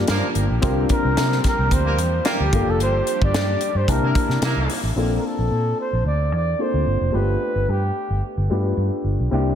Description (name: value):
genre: polished 1980s jazz-funk pop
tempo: 110 BPM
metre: 4/4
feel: swing 54% on 16ths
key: unclear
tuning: A4 = 440 Hz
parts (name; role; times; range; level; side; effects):
- breathy flugelhorn; melody; 0.0-8.2 s; G4 to D5; -25 LUFS; right 1 dB; slapback echo
- dark grand piano; accompaniment; 0.0-9.6 s; A3 to A5; -25 LUFS; left 3 dB; wide subtle chorus, slapback echo
- warm analog pad; sustained chords; 0.0-5.0 s; C3 to G4; -30 LUFS; right 1 dB; chorus
- vintage muted fingered electric bass; bass; 0.0-9.5 s; F1 to C3; -21 LUFS; equal; none
- mellow horn section; second line; 0.1-4.8 s; F3 to Bb4; -29 LUFS; right 2 dB; slapback echo, tape echo
- crisp fusion drum kit; drums; 0.1-4.8 s; hi-hat, kick drum, snare drum; -23 LUFS; equal; none
room: moderate lush hall reverb, RT60 1.7 s, studio reverb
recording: big arena sound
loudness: -18 LUFS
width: side -9 dB against mid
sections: 0.0-5.0 A section; 5.0-9.6 B section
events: none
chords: 0.0 Gm9; 0.6 C7sus4; 2.5 Gm9; 3.9 C13; 5.0 Bbmaj7; 7.1 G9